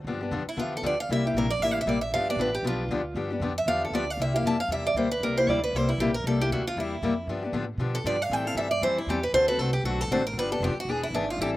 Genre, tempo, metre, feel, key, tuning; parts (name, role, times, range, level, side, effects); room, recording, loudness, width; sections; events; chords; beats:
acoustic string swing (jazz manouche); 233 BPM; 4/4; swing 57% on 8ths; G mixolydian; A4 = 440 Hz
upright bass; bass; 0.0-11.6 s; E1 to B2; -32 LUFS; equal
picked steel-string acoustic guitar; accompaniment; 0.1-11.6 s; C3 to A4; -29 LUFS; left 3 dB
picked steel-string acoustic guitar; melody; 0.5-11.5 s; D4 to A5; -27 LUFS; right 2 dB
little or no reverb; recorded outdoors, with no room sound; -24 LUFS; side -16 dB against mid
0.1-11.6 A section
steel-string acoustic guitar solo 0.1-11.6
0.1 G7; 1.1 C7; 2.1 G7; 4.2 C7; 7.3 G7; 8.3 Am7; 9.3 D7; 10.4 G7; 10.9 E7
| 0.06 0.32 0.58 0.83 | 1.09 1.35 1.61 1.87 | 2.12 2.38 2.64 2.90 | 3.16 3.41 3.67 3.93 | 4.19 4.44 4.70 4.96 | 5.22 5.47 5.73 5.99 | 6.25 6.50 6.76 7.02 | 7.28 7.53 7.79 8.05 | 8.30 8.56 8.82 9.07 | 9.33 9.59 9.85 10.10 | 10.36 10.62 10.87 11.13 | 11.39